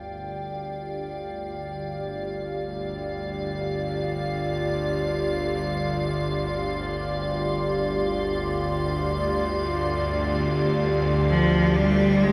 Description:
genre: dark ambient drone.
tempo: free time.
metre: none.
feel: none.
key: unclear.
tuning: A4 = 441 Hz.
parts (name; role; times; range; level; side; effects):
dark analog pad; sustained chords; 0.0-12.3 s; G4 to C6; -30 LUFS; equal; subtle chorus.
bowed-like drone; drone; 0.0-12.3 s; G1 to D2; -30 LUFS; equal; built-in reverb.
icy glass pad; texture; 0.0-12.3 s; F4 to F5; -35 LUFS; equal; chorus, built-in reverb.
rich cello; melody; 11.3-12.3 s; F3 to Ab3; -22 LUFS; equal; none.
room: wet cathedral reverb, RT60 7.1 s.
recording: dark, warm production.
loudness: -26 LUFS.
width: mono.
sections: 0.0-12.3 A section.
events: fade-in on synth drone 0.0-12.3; fade-in on analog synth pad 0.0-12.3; fade-in on ambient pad 0.0-12.3.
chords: 0.0 G5.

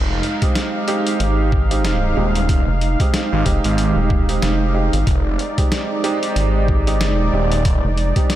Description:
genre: glitch hop.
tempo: 93 BPM.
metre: 4/4.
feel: swing 58% on 16ths.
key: F dorian.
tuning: A4 = 440 Hz.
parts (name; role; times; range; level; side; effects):
warm analog pad; sustained chords; 0.0-8.4 s; Ab3 to F5; -23 LUFS; right 1 dB; chorus, sidechain pumping.
phased detuned saw bass; bass; 0.0-7.8 s; Eb1 to Ab1; -20 LUFS; equal; phaser, overdrive.
boom bap sampler-style drum kit; drums; 0.2-8.4 s; hi-hat, snare drum; -27 LUFS; left 1 dB; small room ambience.
warm baby grand piano; stabs; 0.4-8.4 s; Ab3 to G4; -23 LUFS; right 3 dB; sidechain pumping, tape echo.
electronic kick drum; drums; 0.4-8.3 s; none; -18 LUFS; equal; small room ambience.
rubbery square bass; bass; 1.2-8.1 s; Eb1 to Ab1; -18 LUFS; equal; none.
room: light reverb.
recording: none.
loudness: -15 LUFS.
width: side -13 dB against mid.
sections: 0.0-8.4 A section.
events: none.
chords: 0.0 Fm7.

